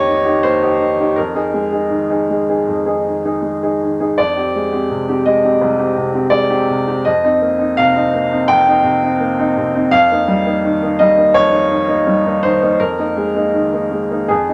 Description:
neoclassical minimalist piano; 83 BPM; 4/4; uneven beats, rubato; A4 = 436 Hz
clear upright piano; solo; 0.0-14.5 s; C2 to G5; -15 LUFS; equal
moderate studio reverb, RT60 0.8 s; -15 LUFS; mono
0.0-14.5 A section
0.0 Eb7/F; 1.2 Absus2/F; 4.2 Fmadd9; 7.1 Cm7/F; 9.9 Eb7/F; 12.8 Absus2/F
0.42 | 1.16 1.91 2.68 3.43 | 4.17 4.90 5.62 6.34 | 7.06 7.78 8.49 9.20 | 9.91 10.63 11.35 12.06 | 12.78 13.53 14.30

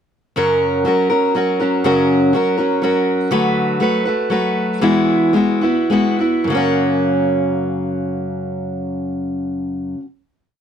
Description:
acoustic folk duo or small band; 102-122 BPM; 3/4; straight; F# mixolydian; A4 = 440 Hz
picked steel-string acoustic guitar; solo; 0.4-10.1 s; F#2 to B4; -15 LUFS; equal
light reverb; close, detailed microphones; -15 LUFS; side -8 dB against mid
0.4-6.5 interlude; 6.5-10.0 final chord
slowing down 3.3-6.5
0.4 F#; 3.3 D6; 4.8 Eadd9; 6.5 F#
| 0.37 0.86 1.35 | 1.84 2.33 2.82 | 3.31 3.80 4.31 | 4.82 5.35 5.90 | 6.47 7.06 7.65 | 8.24 8.83 9.43

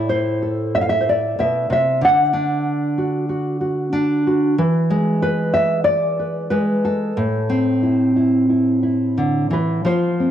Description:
folk, solo fingerstyle acoustic guitar; 93 BPM; 4/4; rubato; A minor; A4 = 440 Hz
nylon-string guitar; solo; 0.0-10.3 s; A2 to F#5; -16 LUFS; equal
moderate lush hall reverb, RT60 2.4 s; home recording on cassette; -16 LUFS; side -10 dB against mid
0.0-9.9 A section
0.0 Am; 2.0 D; 4.6 E7; 7.2 Am
0.08 0.74 1.38 | 2.02 2.65 3.29 3.93 | 4.58 5.22 5.86 6.51 | 7.17 7.82 8.48 9.17 | 9.85

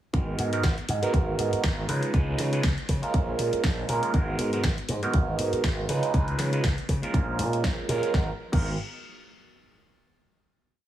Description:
filtered disco house; 120 BPM; 4/4; swing 56% on 16ths; G# dorian; A4 = 440 Hz
overdriven tine electric piano; accompaniment; 0.1-8.7 s; G#3 to B4; -29 LUFS; right 3 dB; phaser, sidechain pumping
slap bass with an envelope filter; bass; 0.1-8.8 s; G#1 to C#3; -29 LUFS; equal; sidechain pumping
electronic kick drum; drums; 0.1-8.6 s; -26 LUFS; equal
house drum kit; drums; 0.1-8.6 s; crash cymbal, hi-hat, snare drum; -34 LUFS; equal; sidechain pumping on hats, sidechain pumping on cymbals
digital ambience; heavily compressed radio sound, multiband compression, small room ambience; -24 LUFS; side -12 dB against mid
0.1-8.1 drop; 8.1-10.1 final chord
drop 0.1-8.1
0.1 G#m9; 1.9 C#9; 3.1 A#m7; 4.1 G#m9; 5.9 C#9; 7.1 A#m7; 8.1 G#m9
| 0.14 0.64 1.14 1.64 | 2.14 2.64 3.14 3.64 | 4.14 4.64 5.14 5.64 | 6.14 6.64 7.14 7.64 | 8.14 8.64

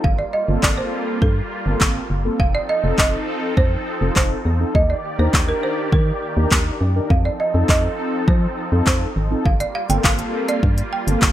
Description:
dance-pop; 102 BPM; 4/4; straight; A4 = 440 Hz
folk marimba with medium hard mallets; melody; 0.0-11.3 s; A4 to G5; -24 LUFS; right 3 dB; digital delay
mellow synth brass; accompaniment; 0.0-11.3 s; Bb3 to Bb4; -25 LUFS; left 1 dB; chorus, sidechain pumping
filtered supersaw swell; sustained chords; 0.0-11.3 s; Eb3 to D5; -28 LUFS; right 1 dB; lush chorus, sidechain pumping
organ-like FM bass; bass; 0.0-11.3 s; F1 to F3; -20 LUFS; equal; sidechain pumping
deep house drum kit; drums; 0.0-11.3 s; handclaps, hi-hat, kick drum; -18 LUFS; equal
little or no reverb; bright 1980s-style digital production; -17 LUFS; side -12 dB against mid
0.0-11.3 A section
0.0 Gm11; 2.4 F7; 4.8 Ebmaj7; 7.1 F7; 9.5 Gm11
| 0.04 0.63 1.22 1.81 | 2.40 2.98 3.57 4.16 | 4.75 5.34 5.93 6.51 | 7.10 7.69 8.28 8.87 | 9.46 10.04 10.63 11.22

